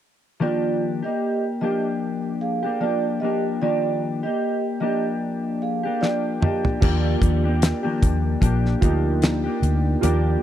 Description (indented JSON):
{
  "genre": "indie pop, bedroom pop",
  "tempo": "75 BPM",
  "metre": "4/4",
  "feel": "swing 55% on 16ths",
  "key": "Eb major",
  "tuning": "A4 = 444 Hz",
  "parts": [
    { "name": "vibraphone with soft mallets", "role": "second line", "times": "0.4-6.6 s", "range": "F4 to F5", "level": "-26 LUFS", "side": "right 5 dB", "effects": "lush chorus, tape echo" },
    { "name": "mellow electric guitar", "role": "accompaniment", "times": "0.4-10.4 s", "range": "Eb3 to G4", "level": "-24 LUFS", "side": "left 4 dB", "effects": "analog chorus, vibrato effect" },
    { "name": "damped 70s drum kit", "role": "drums", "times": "6.0-10.2 s", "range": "crash cymbal, hi-hat, kick drum, snare drum, toms", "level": "-20 LUFS", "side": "equal", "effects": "none" },
    { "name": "warbly lo-fi synth keys", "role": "accompaniment", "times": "6.8-10.4 s", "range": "Eb4 to D5", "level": "-27 LUFS", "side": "right 7 dB", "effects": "chorus" },
    { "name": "vintage muted fingered electric bass", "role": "bass", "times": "6.8-10.4 s", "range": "Bb1 to Eb2", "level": "-21 LUFS", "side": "equal", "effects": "none" }
  ],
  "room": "small room ambience",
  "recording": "dry, close 1970s-style studio recording",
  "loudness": "-20 LUFS",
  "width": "side -11 dB against mid",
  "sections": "0.4-6.8 A section; 6.8-10.4 B section",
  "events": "drum fill 6.0-6.8",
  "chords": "0.4 Ebmaj9",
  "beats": "| 0.41 1.21 2.01 2.81 | 3.62 4.42 5.22 6.02 | 6.83 7.63 8.43 9.23 | 10.03"
}